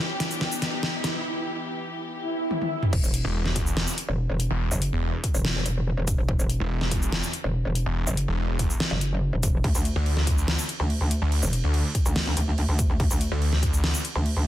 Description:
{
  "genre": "heavy wobble dubstep",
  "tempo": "143 BPM",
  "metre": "4/4",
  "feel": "half-time",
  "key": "E minor",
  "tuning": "A4 = 440 Hz",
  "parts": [
    { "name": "warm studio string section", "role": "sustained chords", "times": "0.0-2.9 s", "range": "E3 to G4", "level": "-33 LUFS", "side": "left 2 dB", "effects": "sidechain pumping" },
    { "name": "riser and swell", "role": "sound effects", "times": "0.0-2.9 s", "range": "none", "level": "-31 LUFS", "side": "right 1 dB", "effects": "none" },
    { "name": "dubstep drum kit", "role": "drums", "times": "0.2-14.3 s", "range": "crash cymbal, hi-hat, shaker, snare drum, toms", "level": "-29 LUFS", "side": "equal", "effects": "overdrive" },
    { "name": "metallic wobble bass", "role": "bass", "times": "2.9-14.5 s", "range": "E1 to D2", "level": "-24 LUFS", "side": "equal", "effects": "distortion, chorus, overdrive" },
    { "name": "electronic kick drum", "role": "drums", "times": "2.9-13.7 s", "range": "none", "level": "-25 LUFS", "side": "equal", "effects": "none" },
    { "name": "snarling distorted saw bass", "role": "bass", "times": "3.2-13.9 s", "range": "E1 to D2", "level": "-24 LUFS", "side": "equal", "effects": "distortion, overdrive" }
  ],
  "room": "little or no reverb",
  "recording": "dense, heavily limited modern master",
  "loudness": "-23 LUFS",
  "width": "side -13 dB against mid",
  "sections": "0.0-2.9 A section; 2.9-14.5 B section",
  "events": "build-up 0.0-2.9; drum fill 0.0-1.2, 2.5-2.9; riser 0.0-1.2; swell 2.1-2.9; drop 2.9-14.5",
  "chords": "0.0 Em; 2.9 N.C."
}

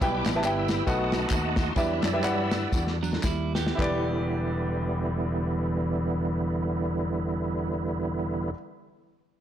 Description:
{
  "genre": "uptempo gospel",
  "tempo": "106-142 BPM",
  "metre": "4/4",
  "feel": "swing 57% on 8ths",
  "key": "E minor",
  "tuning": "A4 = 441 Hz",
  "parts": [
    { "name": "clear concert grand piano", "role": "accompaniment", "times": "0.0-8.5 s", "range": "E2 to A5", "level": "-30 LUFS", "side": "equal", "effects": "none" },
    { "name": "bright tonewheel organ", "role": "sustained chords", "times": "0.0-8.5 s", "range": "D3 to F#6", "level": "-29 LUFS", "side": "right 2 dB", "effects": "chorus vibrato, fast rotary speaker" },
    { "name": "fingered electric bass", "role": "bass", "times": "0.0-8.5 s", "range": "E1 to G2", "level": "-31 LUFS", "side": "left 1 dB", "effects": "none" },
    { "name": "warm soul drum kit", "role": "drums", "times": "0.0-3.9 s", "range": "kick drum, ride cymbal, snare drum", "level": "-29 LUFS", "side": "left 1 dB", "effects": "none" },
    { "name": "tambourine and handclaps", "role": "percussion", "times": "0.0-4.1 s", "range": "none", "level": "-39 LUFS", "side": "left 3 dB", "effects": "none" },
    { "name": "clean electric guitar", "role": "second line", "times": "3.0-4.1 s", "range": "F#3 to G4", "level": "-33 LUFS", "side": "right 8 dB", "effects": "none" }
  ],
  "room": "light reverb, small room ambience",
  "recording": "blown-out, overdriven recording, overdrive",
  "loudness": "-25 LUFS",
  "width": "side -10 dB against mid",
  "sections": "0.0-3.8 A section; 3.8-8.3 B section",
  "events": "tonewheel organ solo 0.0-3.8; slowing down 0.0-3.8; drum fill 2.7-3.8",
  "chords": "0.0 Em; 0.9 B7; 1.8 Em7"
}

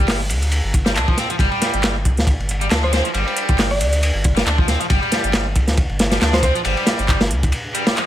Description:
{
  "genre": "breakbeat, breaks",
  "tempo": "137 BPM",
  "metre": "4/4",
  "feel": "swing 56% on 16ths",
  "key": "unclear",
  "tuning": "A4 = 441 Hz",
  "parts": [
    { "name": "overdriven electric guitar", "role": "riff", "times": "0.0-8.0 s", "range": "F3 to D4", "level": "-23 LUFS", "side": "equal", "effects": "tape echo" },
    { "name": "saturated sub bass", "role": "bass", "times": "0.0-7.5 s", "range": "G1 to D2", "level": "-21 LUFS", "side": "equal", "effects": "none" },
    { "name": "crunchy breakbeat drum kit", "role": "drums", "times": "0.1-8.1 s", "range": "hi-hat, kick drum, ride cymbal, snare drum", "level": "-19 LUFS", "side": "equal", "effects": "none" },
    { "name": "house drum kit", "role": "drums", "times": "0.1-8.1 s", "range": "handclaps, hi-hat", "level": "-26 LUFS", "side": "right 1 dB", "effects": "none" },
    { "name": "mallet-like synth pluck", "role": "melody", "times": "2.8-6.5 s", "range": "C5 to D5", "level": "-26 LUFS", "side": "right 1 dB", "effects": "chorus, telephone sound, tape echo" }
  ],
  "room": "small room ambience",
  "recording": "none",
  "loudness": "-16 LUFS",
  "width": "side -12 dB against mid",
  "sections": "0.0-8.1 A section",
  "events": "break 7.5-8.1",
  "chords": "0.0 G5"
}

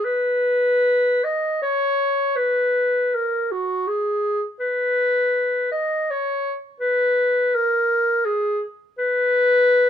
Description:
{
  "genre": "classical, free, expressive piece for unaccompanied clarinet",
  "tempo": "68-84 BPM",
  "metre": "3/4",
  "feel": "rubato",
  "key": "unclear",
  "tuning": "A4 = 440 Hz",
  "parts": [
    { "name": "mellow clarinet", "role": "solo", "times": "0.0-9.9 s", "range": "F#4 to D#5", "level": "-18 LUFS", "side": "left 1 dB", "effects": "none" }
  ],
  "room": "moderate studio reverb, RT60 0.9 s",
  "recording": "none",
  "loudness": "-18 LUFS",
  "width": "side -9 dB against mid",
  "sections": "0.0-9.9 A section",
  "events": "none",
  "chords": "none"
}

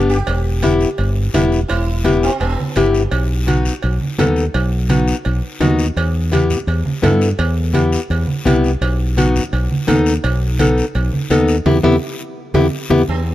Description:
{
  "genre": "latin, cumbia",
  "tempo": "169 BPM",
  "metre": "4/4",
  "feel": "straight",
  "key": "E harmonic minor",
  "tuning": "A4 = 440 Hz",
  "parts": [
    { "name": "sitar", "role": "second line", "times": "0.0-3.1, 13.1-13.3 s", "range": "B3 to G4", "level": "-26 LUFS", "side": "right 4 dB", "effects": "none" },
    { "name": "nylon-string guitar", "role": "accompaniment", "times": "0.0-13.0 s", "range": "B3 to A4", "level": "-18 LUFS", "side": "left 3 dB", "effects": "none" },
    { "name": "fingered electric bass", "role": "bass", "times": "0.0-13.3 s", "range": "E1 to G2", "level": "-17 LUFS", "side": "equal", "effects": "none" },
    { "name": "guiro", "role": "percussion", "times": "0.1-13.3 s", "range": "none", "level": "-32 LUFS", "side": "left 5 dB", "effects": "none" },
    { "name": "cowbell and timbales", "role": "percussion", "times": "0.3-13.0 s", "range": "none", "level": "-26 LUFS", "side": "right 5 dB", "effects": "none" },
    { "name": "congas", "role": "percussion", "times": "0.6-13.0 s", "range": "none", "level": "-21 LUFS", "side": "right 2 dB", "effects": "none" }
  ],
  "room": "light reverb",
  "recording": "none",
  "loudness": "-14 LUFS",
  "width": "side -14 dB against mid",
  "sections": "0.0-1.7 A section; 1.7-13.1 B section",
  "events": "band accent 11.7-13.1",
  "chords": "0.3 Em; 3.1 B; 6.0 Em; 8.8 B7; 11.7 Em"
}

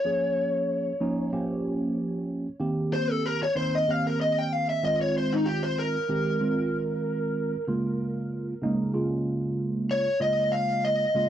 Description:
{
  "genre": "jazz",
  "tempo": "95 BPM",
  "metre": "4/4",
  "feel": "straight",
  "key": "Bb dorian",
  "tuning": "A4 = 440 Hz",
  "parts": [
    { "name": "lead guitar through a small cranked amp", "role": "melody", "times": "0.0-11.3 s", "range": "Eb4 to G5", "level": "-27 LUFS", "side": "left 1 dB", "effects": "overdrive, tape echo" },
    { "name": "tine electric piano", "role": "accompaniment", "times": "0.0-11.3 s", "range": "Db3 to Ab4", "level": "-27 LUFS", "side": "right 2 dB", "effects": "phaser" }
  ],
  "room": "light reverb",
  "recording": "dry, close 1970s-style studio recording",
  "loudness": "-24 LUFS",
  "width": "side -10 dB against mid",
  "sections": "0.0-11.3 A section",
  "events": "lead electric guitar solo 0.0-11.3",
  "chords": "0.0 Bbm7; 2.6 Cm7; 4.8 Fm7; 7.7 Bbm7"
}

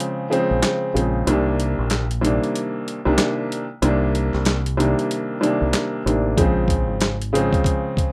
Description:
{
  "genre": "hip hop, boom-bap hip-hop",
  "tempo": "94 BPM",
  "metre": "4/4",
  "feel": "swing 61% on 16ths",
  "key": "unclear",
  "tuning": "A4 = 440 Hz",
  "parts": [
    { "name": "warm upright piano", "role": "accompaniment", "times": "0.0-8.1 s", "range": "C2 to D4", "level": "-23 LUFS", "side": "equal", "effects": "high-pass filter, low-pass filter" },
    { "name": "dusty soul sampler-style drum kit", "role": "drums", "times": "0.0-8.1 s", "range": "handclaps, hi-hat, kick drum, snare drum", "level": "-25 LUFS", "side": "equal", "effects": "none" },
    { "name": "deep dub fingered electric bass", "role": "bass", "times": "0.5-7.5 s", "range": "Ab1 to C2", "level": "-25 LUFS", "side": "equal", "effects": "none" }
  ],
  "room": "light reverb",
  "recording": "rough home demo mix",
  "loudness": "-21 LUFS",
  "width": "mono",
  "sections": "0.0-8.1 A section",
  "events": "break 0.0-6.4",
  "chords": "0.0 Bbm9; 1.3 Cm9; 6.4 Bbm9"
}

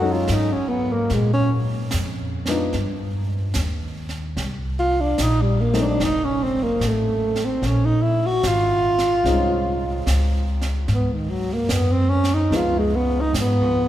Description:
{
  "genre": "jazz ballad",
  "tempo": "74 BPM",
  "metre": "4/4",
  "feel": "swing 67% on 8ths",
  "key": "Bb minor",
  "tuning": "A4 = 440 Hz",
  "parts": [
    { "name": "breathy tenor saxophone", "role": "melody", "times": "0.0-13.9 s", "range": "Eb3 to Gb4", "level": "-21 LUFS", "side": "right 1 dB", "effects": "none" },
    { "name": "warm baby grand piano", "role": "accompaniment", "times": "0.0-13.9 s", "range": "F3 to A4", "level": "-28 LUFS", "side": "left 2 dB", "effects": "none" },
    { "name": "upright bass", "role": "bass", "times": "0.0-13.9 s", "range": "F1 to Bb2", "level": "-22 LUFS", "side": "equal", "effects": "none" },
    { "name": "jazz brush drum kit", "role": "drums", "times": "0.3-13.9 s", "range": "brushed snare drum, hi-hat, snare drum", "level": "-32 LUFS", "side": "right 2 dB", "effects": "none" }
  ],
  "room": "wet cathedral reverb, RT60 4.2 s",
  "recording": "recorded in a church or concert hall",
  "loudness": "-18 LUFS",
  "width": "side -12 dB against mid",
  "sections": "0.0-13.9 A section",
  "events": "tenor saxophone solo 0.0-13.9",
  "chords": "0.0 Gbm69; 1.1 Bbsus4; 2.7 Eb; 4.4 Cm7; 6.0 F; 7.6 Bbm11; 10.9 Gbsus2; 12.5 Db9"
}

